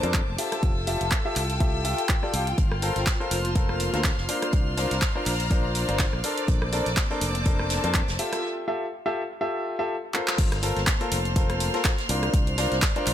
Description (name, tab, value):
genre	piano house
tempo	123 BPM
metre	4/4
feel	swing 56% on 16ths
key	G dorian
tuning	A4 = 443 Hz
part	warm studio violin section	sustained chords	0.0-13.1 s	A4 to F6	-34 LUFS	equal	sidechain pumping
part	warm concert grand piano	riff	0.0-13.1 s	D4 to F5	-29 LUFS	left 2 dB	sidechain pumping, low-pass filter, dub echo
part	modern bright fingered electric bass	bass	0.0-13.1 s	F1 to F2	-29 LUFS	equal	sidechain pumping
part	punchy analog drum machine	drums	0.0-13.1 s	crash cymbal, handclaps, hi-hat, rim click	-29 LUFS	equal	none
part	rich symphonic string section	texture	0.0-13.1 s	Bb3 to Bb5	-33 LUFS	left 1 dB	sidechain pumping
part	electronic kick drum	drums	0.1-12.9 s	none	-24 LUFS	equal	none
part	soft-mallet drum kit	drums	2.6-13.1 s	hi-hat, snare drum	-37 LUFS	right 3 dB	sidechain pumping on hats, high-pass filter on hats, high-pass filter on snare, high-pass filter on room
room	light reverb, studio reverb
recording	none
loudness	-22 LUFS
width	side -11 dB against mid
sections	0.0-10.4 A section; 10.4-13.1 B section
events	break 8.4-10.4; drum fill 10.1; band accent 10.3; drop 10.4-13.1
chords	0.4 Fmaj9; 2.6 Gm11; 4.3 C9sus4; 6.5 Bbmaj9; 8.2 Fmaj9; 10.4 Gm11; 12.1 C9sus4